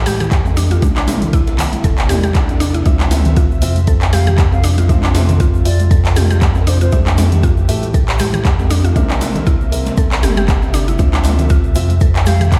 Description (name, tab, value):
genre	afro house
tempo	118 BPM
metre	4/4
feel	swing 56% on 16ths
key	D minor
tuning	A4 = 439 Hz
part	warm analog pad	sustained chords	0.0-12.6 s	C3 to E5	-28 LUFS	equal	chorus, sidechain pumping
part	round analog bass	bass	0.0-12.6 s	G1 to A2	-17 LUFS	equal	sidechain pumping
part	mallet-like synth pluck	arpeggios	0.1-12.5 s	D4 to A4	-26 LUFS	equal	chorus, sidechain pumping, delay
part	deep house drum kit	drums	0.1-12.6 s	handclaps, hi-hat, toms	-24 LUFS	equal	none
part	congas	percussion	0.1-12.6 s	none	-26 LUFS	equal	none
part	tube shaker	percussion	0.1-12.6 s	none	-39 LUFS	equal	none
part	electronic kick drum	drums	0.3-12.6 s	none	-16 LUFS	equal	overdrive
part	djembe	percussion	0.5-11.5 s	none	-27 LUFS	equal	none
part	swell	sound effects	2.1-2.9 s	none	-33 LUFS	equal	none
part	felt-muted upright piano	stabs	2.9-11.9 s	A3 to E5	-28 LUFS	equal	sidechain pumping, delay
part	mellow hollow silver concert flute	melody	4.1-7.0, 12.3-12.4 s	C5 to F5	-30 LUFS	equal	vintage 12-bit sampler grit, delay
room	light reverb, small room reverb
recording	played on a big sound system in a bare room, large studio reverb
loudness	-14 LUFS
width	mono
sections	0.0-12.6 A section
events	swell 2.1-2.9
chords	0.0 Fmaj9; 0.8 C7; 2.9 Dm9; 6.9 Fmaj9; 9.0 C7; 11.0 Dm9